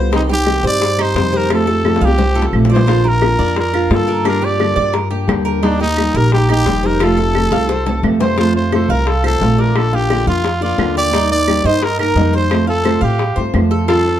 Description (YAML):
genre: latin, Cuban son and guajira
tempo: 174 BPM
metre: 4/4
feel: straight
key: unclear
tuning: A4 = 440 Hz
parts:
  - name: flamenco guitar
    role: accompaniment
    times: 0.0-14.2 s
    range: C3 to G4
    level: -19 LUFS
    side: equal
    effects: none
  - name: Cuban tres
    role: arpeggios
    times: 0.0-14.2 s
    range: D4 to F5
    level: -22 LUFS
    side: right 3 dB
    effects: none
  - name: upright bass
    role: bass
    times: 0.0-14.2 s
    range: F1 to A2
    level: -18 LUFS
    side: equal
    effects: none
  - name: growling trumpet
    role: melody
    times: 0.1-14.2 s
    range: D4 to D5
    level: -18 LUFS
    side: right 1 dB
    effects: none
  - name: buzzing kalimba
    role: second line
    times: 0.1-8.1, 13.9-14.2 s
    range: Bb3 to Bb4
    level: -23 LUFS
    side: right 1 dB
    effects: none
  - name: bongos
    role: percussion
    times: 0.1-14.1 s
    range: none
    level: -22 LUFS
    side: left 6 dB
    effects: none
  - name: claves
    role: percussion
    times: 0.5-13.7 s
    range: none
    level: -30 LUFS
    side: right 7 dB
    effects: none
room: light reverb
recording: dark, warm production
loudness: -12 LUFS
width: side -11 dB against mid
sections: 0.0-8.4 A section; 8.4-14.2 B section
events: drum fill 1.8-2.9, 7.3-8.4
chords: 0.1 Cm; 1.5 F; 2.9 Bb; 4.2 Gm; 5.6 Eb; 7.0 F; 9.8 Bb; 11.1 Eb; 12.5 F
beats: | 0.12 0.46 0.81 1.15 | 1.50 1.84 2.18 2.53 | 2.87 3.22 3.56 3.91 | 4.25 4.59 4.94 5.28 | 5.63 5.97 6.32 6.66 | 7.00 7.35 7.69 8.04 | 8.38 8.72 9.07 9.41 | 9.76 10.10 10.45 10.79 | 11.13 11.48 11.82 12.17 | 12.51 12.85 13.20 13.54 | 13.89